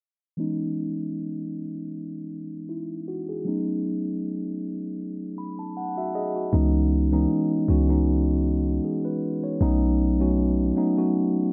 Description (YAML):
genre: R&B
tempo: 78 BPM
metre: 4/4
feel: swing 54% on 16ths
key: C# minor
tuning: A4 = 440 Hz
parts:
  - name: mellow tine electric piano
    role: accompaniment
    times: 0.4-11.5 s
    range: E3 to B5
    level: -27 LUFS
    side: equal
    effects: none
  - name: warm 808-style bass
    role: bass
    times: 6.5-10.7 s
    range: B1 to C#2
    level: -25 LUFS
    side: equal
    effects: none
room: moderate plate reverb, RT60 3.4 s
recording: low-pass filter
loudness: -25 LUFS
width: mono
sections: 0.4-6.5 A section; 6.5-11.5 B section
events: filter sweep 0.4-6.5; tine electric piano fill 5.0-6.5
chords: 0.4 C#m7; 3.5 B7; 6.5 C#m7; 9.6 B7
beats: | 0.38 1.15 1.92 2.69 | 3.46 4.22 4.99 5.76 | 6.53 7.30 8.07 8.84 | 9.61 10.38 11.15